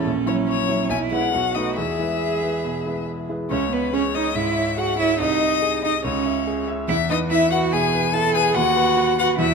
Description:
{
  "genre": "quick classical-period movement for piano trio",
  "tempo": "142 BPM",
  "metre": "4/4",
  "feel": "straight",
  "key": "E major, C# minor from 3.5 s",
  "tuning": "A4 = 439 Hz",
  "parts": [
    { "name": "rich violin", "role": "melody", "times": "0.0-9.5 s", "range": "B4 to A5", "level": "-23 LUFS", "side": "left 9 dB", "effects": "none" },
    { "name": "rich cello", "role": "second line", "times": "0.0-9.5 s", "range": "B3 to A4", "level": "-23 LUFS", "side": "right 7 dB", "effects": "none" },
    { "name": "clear grand piano", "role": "accompaniment", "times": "0.0-9.5 s", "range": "A#1 to E5", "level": "-24 LUFS", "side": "equal", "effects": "none" }
  ],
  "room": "moderate scoring stage reverb, RT60 1.9 s",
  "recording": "none",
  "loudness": "-19 LUFS",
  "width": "side -5 dB against mid",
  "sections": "0.0-3.5 A section; 3.5-9.5 B section",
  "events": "none",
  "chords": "0.1 F#7/A#; 0.9 E/B; 1.3 B7; 1.8 E; 3.5 C#m; 5.2 G#/B#; 6.0 C#m; 6.9 E; 8.6 B/D#",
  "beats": "| 0.06 0.48 0.90 1.33 | 1.76 2.20 2.63 3.07 | 3.50 3.93 4.35 4.78 | 5.20 5.62 6.04 6.47 | 6.88 7.31 7.72 8.14 | 8.56 8.98 9.40"
}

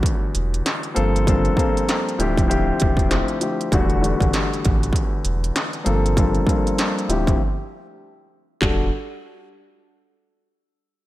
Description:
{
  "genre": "hip hop, boom-bap hip-hop",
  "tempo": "98 BPM",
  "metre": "4/4",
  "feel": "swing 60% on 16ths",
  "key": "E phrygian",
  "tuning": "A4 = 439 Hz",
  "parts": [
    { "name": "dark baby grand piano", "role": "accompaniment", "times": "0.0-8.9 s", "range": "D2 to A4", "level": "-22 LUFS", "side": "left 2 dB", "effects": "cassette tape, high-pass filter, low-pass filter" },
    { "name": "industrial drum kit", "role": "drums", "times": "0.0-8.8 s", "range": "handclaps, hi-hat, kick drum, snare drum", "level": "-21 LUFS", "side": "equal", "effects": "distortion" },
    { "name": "warm sub bass", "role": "bass", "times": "0.4-8.9 s", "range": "D1 to A1", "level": "-22 LUFS", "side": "right 1 dB", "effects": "none" }
  ],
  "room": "light reverb",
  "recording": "none",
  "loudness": "-18 LUFS",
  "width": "side -16 dB against mid",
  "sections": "0.0-8.6 A section; 8.6-11.1 B section",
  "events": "filter sweep on grand piano 0.0-8.6; break 7.4-8.6",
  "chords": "0.0 Em11; 1.0 Gm11; 2.2 Dm11; 3.7 Em11; 5.9 Gm11; 7.1 Dm11; 8.6 Em11",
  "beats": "0.05 0.66 | 1.27 1.88 2.50 3.11 | 3.72 4.33 4.94 5.56 | 6.17 6.78 7.39 8.01 | 8.62"
}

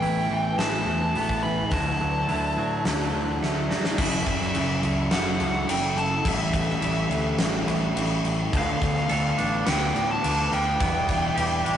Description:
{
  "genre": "rock, shoegaze and dream pop",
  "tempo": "106 BPM",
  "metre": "4/4",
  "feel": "straight",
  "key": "A mixolydian",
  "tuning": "A4 = 438 Hz",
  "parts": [
    { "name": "nasal lead guitar with a parked wah", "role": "melody", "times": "0.0-11.8 s", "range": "E5 to B5", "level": "-28 LUFS", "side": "equal", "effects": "overdrive" },
    { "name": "ethereal airy pad", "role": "sustained chords", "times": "0.0-11.8 s", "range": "E4 to E6", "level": "-36 LUFS", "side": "left 2 dB", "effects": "ensemble chorus, built-in reverb" },
    { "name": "twangy electric guitar", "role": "arpeggios", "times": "0.0-4.0, 8.5-11.8 s", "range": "E3 to A4", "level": "-32 LUFS", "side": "right 2 dB", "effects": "none" },
    { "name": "electric guitar through a small old amp", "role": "riff", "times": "0.0-11.8 s", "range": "A2 to B4", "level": "-30 LUFS", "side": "right 3 dB", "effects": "none" },
    { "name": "thick fuzz guitar", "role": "riff", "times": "0.0-11.8 s", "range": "E2 to D4", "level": "-32 LUFS", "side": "left 3 dB", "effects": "distortion" },
    { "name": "growling picked electric bass", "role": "bass", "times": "0.0-11.8 s", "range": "E1 to A2", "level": "-29 LUFS", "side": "equal", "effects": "overdrive" },
    { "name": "huge arena drum kit", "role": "drums", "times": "0.0-11.8 s", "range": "crash cymbal, hi-hat, kick drum, snare drum", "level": "-28 LUFS", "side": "equal", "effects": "none" }
  ],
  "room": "wet studio reverb, RT60 0.6 s",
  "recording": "rough rehearsal-room recording, warm saturation, nothing above 10.4 kHz",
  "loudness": "-22 LUFS",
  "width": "side -10 dB against mid",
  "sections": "0.0-4.0 A section; 4.0-11.8 B section",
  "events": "drum fill 3.4-4.0",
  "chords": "0.0 Asus2; 1.7 Dadd9; 4.0 F#m7; 6.2 A7; 8.5 Dm6; 10.8 Em7",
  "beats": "0.02 0.58 1.15 | 1.72 2.28 2.85 3.42 | 3.98 4.55 5.12 5.68 | 6.25 6.82 7.38 7.95 | 8.52 9.09 9.65 10.22 | 10.79 11.36"
}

